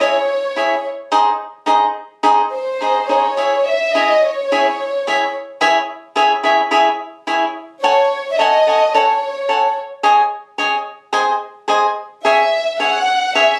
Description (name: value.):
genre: mexican folk.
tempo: 108 BPM.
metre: 2/4.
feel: straight.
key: C# minor.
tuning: A4 = 440 Hz.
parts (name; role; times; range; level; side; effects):
dark studio violin section; melody; 0.0-5.3, 7.8-9.8, 12.2-13.6 s; B#4 to F#5; -19 LUFS; equal; none.
cavaquinho; accompaniment; 0.0-13.5 s; D#4 to G#5; -16 LUFS; equal; none.
room: moderate studio reverb, RT60 0.6 s.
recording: recorded on a phone in the room, club reverb.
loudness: -16 LUFS.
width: mono.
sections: 0.0-13.6 A section.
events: none.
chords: 0.0 C#m; 1.1 G#; 3.4 C#m; 7.8 F#madd9; 10.0 G#sus4; 11.1 G#; 12.3 C#m.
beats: | 0.01 0.57 | 1.13 1.68 | 2.24 2.81 | 3.37 3.94 | 4.50 5.05 | 5.60 6.15 | 6.71 7.27 | 7.83 8.39 | 8.95 9.49 | 10.04 10.58 | 11.13 11.69 | 12.25 12.81 | 13.36.